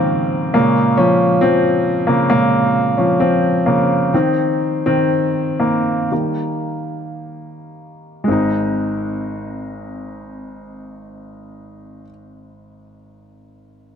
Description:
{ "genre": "pop", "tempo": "53-69 BPM", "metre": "4/4", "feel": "straight", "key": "Ab major", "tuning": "A4 = 440 Hz", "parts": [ { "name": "clear baby grand piano", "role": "accompaniment", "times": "0.0-14.0 s", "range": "Ab1 to Eb4", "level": "-16 LUFS", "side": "equal", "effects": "none" } ], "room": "moderate lush hall reverb, RT60 2.5 s", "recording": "dark, warm production", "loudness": "-14 LUFS", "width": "side -7 dB against mid", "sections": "0.0-8.3 A section; 8.3-12.8 B section", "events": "grand piano solo 0.0-8.3; slowing down 0.5-8.3", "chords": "0.0 Dbadd9/Ab; 0.5 Bbm7; 4.1 Cm7/Eb; 6.1 Eb; 8.3 Ab", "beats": "| 0.54 1.42 2.30 3.21 | 4.14 5.11 6.11 7.17 | 8.28 9.40 10.52 11.63" }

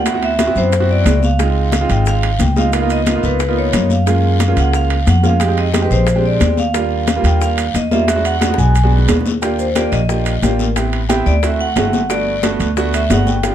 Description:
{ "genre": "Afro-Cuban jazz", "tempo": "179 BPM", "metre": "4/4", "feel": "straight", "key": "unclear", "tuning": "A4 = 440 Hz", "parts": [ { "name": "vibraphone with medium mallets", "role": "melody", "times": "0.0-13.5 s", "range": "Bb4 to G#5", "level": "-20 LUFS", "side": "equal", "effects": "none" }, { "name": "upright bass", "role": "bass", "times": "0.0-13.5 s", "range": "G1 to F#2", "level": "-16 LUFS", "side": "equal", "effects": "none" }, { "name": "bright grand piano", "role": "accompaniment", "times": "0.1-13.5 s", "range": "G3 to G4", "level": "-19 LUFS", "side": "right 4 dB", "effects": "none" }, { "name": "bongos", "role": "percussion", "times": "0.1-13.5 s", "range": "none", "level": "-26 LUFS", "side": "left 9 dB", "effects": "none" }, { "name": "congas", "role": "percussion", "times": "0.1-13.5 s", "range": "none", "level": "-21 LUFS", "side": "left 3 dB", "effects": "none" }, { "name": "guiro", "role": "percussion", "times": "0.1-13.5 s", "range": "none", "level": "-32 LUFS", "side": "left 9 dB", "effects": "none" }, { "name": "maracas", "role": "percussion", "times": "0.1-13.5 s", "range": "none", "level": "-33 LUFS", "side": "right 7 dB", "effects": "none" }, { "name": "timbales", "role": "percussion", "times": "0.1-13.5 s", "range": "none", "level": "-24 LUFS", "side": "right 6 dB", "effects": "none" } ], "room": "light reverb", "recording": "dark, warm production", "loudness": "-13 LUFS", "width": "side -10 dB against mid", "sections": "0.0-9.4 A section; 9.4-13.5 B section", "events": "drum fill 8.4-9.4; vibraphone solo 9.4-13.5", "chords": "0.1 D13; 1.4 Dbmaj7; 2.7 Db13; 4.1 Gbmaj7; 5.4 Fm9; 6.1 Bb13; 6.7 Ebmaj9; 8.1 E9; 9.4 Ebmaj7; 10.8 Am7; 11.4 D7; 12.1 Gmaj7", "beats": "| 0.06 0.39 0.73 1.06 | 1.40 1.73 2.06 2.40 | 2.73 3.07 3.40 3.73 | 4.07 4.40 4.74 5.07 | 5.41 5.74 6.08 6.41 | 6.75 7.08 7.41 7.75 | 8.08 8.42 8.75 9.09 | 9.42 9.76 10.09 10.43 | 10.76 11.10 11.43 11.77 | 12.10 12.44 12.77 13.11 | 13.44" }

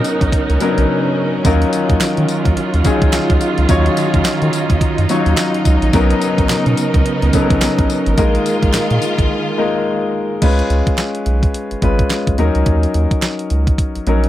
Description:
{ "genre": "R&B, new jack swing", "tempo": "107 BPM", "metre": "4/4", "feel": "swing 60% on 16ths", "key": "Eb minor", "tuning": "A4 = 440 Hz", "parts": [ { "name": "warm concert grand piano", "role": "accompaniment", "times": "0.0-14.3 s", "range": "F#3 to Db5", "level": "-17 LUFS", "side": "left 3 dB", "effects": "plate reverb" }, { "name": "dark studio string section", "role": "sustained chords", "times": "0.0-10.4 s", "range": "Db3 to A#4", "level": "-20 LUFS", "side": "right 4 dB", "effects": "plate reverb" }, { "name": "clean 12-bit digital drum machine", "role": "drums", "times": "0.0-14.3 s", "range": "crash cymbal, handclaps, hi-hat, kick drum, snare drum, tambourine", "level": "-18 LUFS", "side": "equal", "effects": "none" }, { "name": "round analog bass", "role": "bass", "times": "0.2-14.3 s", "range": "Ab1 to Eb3", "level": "-16 LUFS", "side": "equal", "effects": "none" }, { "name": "group handclap", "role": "percussion", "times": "2.0-13.4 s", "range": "none", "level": "-29 LUFS", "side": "right 12 dB", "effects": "none" } ], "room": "light reverb", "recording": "none", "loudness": "-13 LUFS", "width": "side -13 dB against mid", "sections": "0.0-10.4 A section; 10.4-14.3 B section", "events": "break 0.9-1.4, 9.3-10.4", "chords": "0.0 Bmaj9; 1.4 Ebm9; 5.9 Bmaj9; 8.2 Bb7sus4; 10.4 Db7; 12.4 Ebm7", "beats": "0.33 0.89 | 1.45 2.01 2.57 3.13 | 3.69 4.25 4.81 5.37 | 5.93 6.49 7.05 7.62 | 8.18 8.74 9.30 9.86 | 10.42 10.98 11.54 12.10 | 12.66 13.22 13.78" }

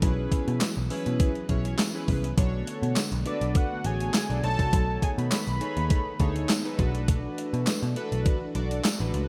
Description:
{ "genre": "early-eighties boogie funk", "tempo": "102 BPM", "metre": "4/4", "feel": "straight", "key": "B dorian", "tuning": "A4 = 440 Hz", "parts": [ { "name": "chorused polysynth", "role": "accompaniment", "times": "0.0-9.3 s", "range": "C#4 to D5", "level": "-35 LUFS", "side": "equal", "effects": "none" }, { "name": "string machine, violins", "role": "sustained chords", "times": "0.0-9.3 s", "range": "D3 to D4", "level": "-40 LUFS", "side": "equal", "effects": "ensemble chorus" }, { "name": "vintage muted picked electric bass", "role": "bass", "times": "0.0-9.3 s", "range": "A1 to B2", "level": "-30 LUFS", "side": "equal", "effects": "none" }, { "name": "clean 12-bit digital drum machine", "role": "drums", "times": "0.0-9.3 s", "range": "handclaps, hi-hat, kick drum, snare drum", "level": "-29 LUFS", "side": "equal", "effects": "overdrive" }, { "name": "tambourine", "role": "percussion", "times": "0.6-9.0 s", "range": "none", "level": "-40 LUFS", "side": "equal", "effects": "none" }, { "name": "fat analog lead", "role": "melody", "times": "3.3-6.8 s", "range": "D5 to B5", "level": "-34 LUFS", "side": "equal", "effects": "none" } ], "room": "light reverb, digital ambience", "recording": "rough home demo mix", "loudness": "-27 LUFS", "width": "mono", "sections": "0.0-9.3 A section", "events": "none", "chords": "0.0 F#7sus4/B; 2.4 Bm9; 4.4 B13; 6.8 E9sus4/B", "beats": "| 0.02 0.61 1.20 1.79 | 2.38 2.96 3.55 4.14 | 4.73 5.32 5.91 6.49 | 7.08 7.67 8.26 8.85" }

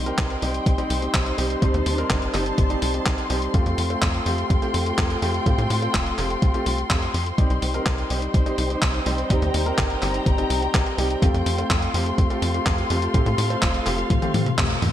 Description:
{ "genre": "italo disco", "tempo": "125 BPM", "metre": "4/4", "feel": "straight", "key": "C dorian", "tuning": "A4 = 440 Hz", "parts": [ { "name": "dark chamber string section", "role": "sustained chords", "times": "0.0-14.9 s", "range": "Eb4 to C6", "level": "-28 LUFS", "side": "left 1 dB", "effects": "none" }, { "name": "warm grand piano", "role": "stabs", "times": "0.0-14.8 s", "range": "G3 to C5", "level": "-27 LUFS", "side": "equal", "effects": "digital delay" }, { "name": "tight sequencer bass", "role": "bass", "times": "0.0-14.9 s", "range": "F1 to A2", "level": "-26 LUFS", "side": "equal", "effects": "none" }, { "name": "clean 12-bit digital drum machine", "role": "drums", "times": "0.1-14.9 s", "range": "handclaps, hi-hat, toms", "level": "-27 LUFS", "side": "left 1 dB", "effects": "gated reverb" }, { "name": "electronic kick drum", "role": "drums", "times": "0.2-14.7 s", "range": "none", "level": "-22 LUFS", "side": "equal", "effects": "none" } ], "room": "light reverb", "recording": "none", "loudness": "-20 LUFS", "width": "side -11 dB against mid", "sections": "0.0-14.9 A section", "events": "drum fill 14.1-14.9; band accent 14.6", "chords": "0.0 Cm; 3.5 Fadd9; 7.4 Cm; 11.2 Fadd9", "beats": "0.18 0.66 1.14 | 1.62 2.10 2.58 3.06 | 3.54 4.02 4.50 4.98 | 5.46 5.94 6.42 6.90 | 7.38 7.86 8.34 8.82 | 9.30 9.78 10.26 10.74 | 11.22 11.70 12.18 12.66 | 13.14 13.62 14.10 14.58" }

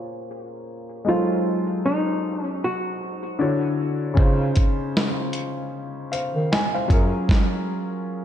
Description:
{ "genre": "lo-fi hip hop", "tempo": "77 BPM", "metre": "4/4", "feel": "swing 57% on 16ths", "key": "unclear", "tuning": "A4 = 438 Hz", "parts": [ { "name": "archtop guitar, miked and amplified", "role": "melody", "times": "0.0-3.8 s", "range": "Eb4 to Gb4", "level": "-26 LUFS", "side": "right 1 dB", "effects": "low-pass filter, tape echo" }, { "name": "warm upright piano", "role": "accompaniment", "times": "0.0-8.2 s", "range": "Db3 to Ab5", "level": "-25 LUFS", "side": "left 2 dB", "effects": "low-pass filter" }, { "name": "dark bass clarinet", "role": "bass", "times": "4.2-7.1 s", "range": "Gb2 to Eb3", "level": "-24 LUFS", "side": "right 1 dB", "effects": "none" }, { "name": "dusty soul sampler-style drum kit", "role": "drums", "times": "4.2-7.5 s", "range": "hi-hat, kick drum, snare drum", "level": "-21 LUFS", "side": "equal", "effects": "vintage 12-bit sampler grit" } ], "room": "moderate lush hall reverb, RT60 2.5 s", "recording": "dreamy mix soaked in reverb", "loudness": "-20 LUFS", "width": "side -10 dB against mid", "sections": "0.0-8.2 A section", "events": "stop 7.3-8.2", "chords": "0.0 Bbm9; 1.1 Ab7b9; 3.4 Dmaj9; 4.2 Dbmaj9; 6.9 Gbmaj9", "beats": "0.28 | 1.06 1.84 2.62 3.40 | 4.17 4.95 5.73 6.51 | 7.29 8.07" }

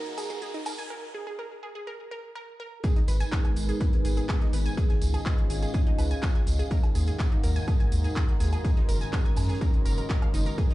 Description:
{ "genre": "melodic techno", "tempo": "124 BPM", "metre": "4/4", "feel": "straight", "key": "G# dorian", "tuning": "A4 = 440 Hz", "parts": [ { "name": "dark analog pad", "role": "sustained chords", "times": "0.0-10.7 s", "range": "G#3 to F#5", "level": "-38 LUFS", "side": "equal", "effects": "chorus, sidechain pumping" }, { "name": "wide unison pluck", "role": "arpeggios", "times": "0.0-10.7 s", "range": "D#4 to G#6", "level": "-38 LUFS", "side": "right 1 dB", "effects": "sidechain pumping, ping-pong delay" }, { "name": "riser", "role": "sound effects", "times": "0.0-0.9 s", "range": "none", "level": "-44 LUFS", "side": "equal", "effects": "none" }, { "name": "warbly tape-like pad", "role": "texture", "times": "0.0-10.7 s", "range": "B3 to A#5", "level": "-39 LUFS", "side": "right 1 dB", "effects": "chorus, built-in reverb, sidechain pumping" }, { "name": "techno drum kit", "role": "drums", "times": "0.1-10.7 s", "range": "handclaps, hi-hat, woodblock", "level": "-39 LUFS", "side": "equal", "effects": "none" }, { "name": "tambourine", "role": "percussion", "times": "0.2-10.7 s", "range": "none", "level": "-44 LUFS", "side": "right 3 dB", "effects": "none" }, { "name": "analog drone", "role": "drone", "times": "3.8-10.7 s", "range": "G#2 to D#3", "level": "-38 LUFS", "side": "left 1 dB", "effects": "chorus, sidechain pumping" }, { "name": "crunchy breakbeat drum kit", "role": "drums", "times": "2.8-10.7 s", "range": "hi-hat, snare drum", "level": "-52 LUFS", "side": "equal", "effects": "none" }, { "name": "electronic kick drum", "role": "drums", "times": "2.8-10.7 s", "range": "none", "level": "-25 LUFS", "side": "equal", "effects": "none" }, { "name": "round analog bass", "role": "bass", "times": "3.1-10.5 s", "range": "F#1 to F#2", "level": "-26 LUFS", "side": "equal", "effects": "tube saturation, sidechain pumping" } ], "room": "digital ambience", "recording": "played on a big sound system in a bare room, large studio reverb, high-pass filter, nothing above 10.7 kHz", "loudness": "-23 LUFS", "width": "side -17 dB against mid", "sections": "0.0-2.8 A section; 2.8-10.7 B section", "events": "build-up 0.0-2.8; riser 0.0-0.9; filter sweep on synth arpeggio sound 0.0-2.8; break 0.9-2.8; drop 2.8-10.7", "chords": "0.0 D#m; 0.9 G#sus2; 2.8 G#m; 4.8 C#; 6.7 D#m; 8.6 F#", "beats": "0.42 | 0.90 1.39 1.87 2.35 | 2.84 3.32 3.81 4.29 | 4.77 5.26 5.74 6.23 | 6.71 7.19 7.68 8.16 | 8.64 9.13 9.61 10.10 | 10.58" }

